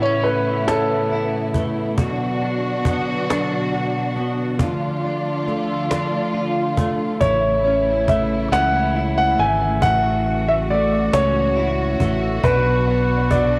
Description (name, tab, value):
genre	six-eight pop ballad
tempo	46 BPM (dotted quarters)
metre	6/8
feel	straight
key	A major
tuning	A4 = 440 Hz
part	clear grand piano	melody	0.0-1.6, 7.2-13.6 s	A4 to G#5	-22 LUFS	equal	cassette tape, analog delay
part	direct-recorded clean electric guitar	accompaniment	0.0-13.6 s	A2 to F#4	-26 LUFS	equal	double-tracked, cassette tape
part	warm studio string section	sustained chords	0.0-13.6 s	A2 to F#4	-26 LUFS	equal	cassette tape
part	cajon	drums	0.2-13.5 s	none	-27 LUFS	equal	cassette tape
part	fingered electric bass	bass	7.2-13.6 s	G#1 to C#2	-26 LUFS	equal	none
room	moderate spring reverb, RT60 2.8 s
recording	home recording on cassette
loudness	-20 LUFS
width	mono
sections	0.0-13.6 A section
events	none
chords	0.0 A; 2.0 Bm; 4.6 Dm; 7.2 A; 12.4 Bm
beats	0.67 | 1.98 3.29 | 4.59 5.90 | 7.21 8.52 | 9.82 11.13 | 12.43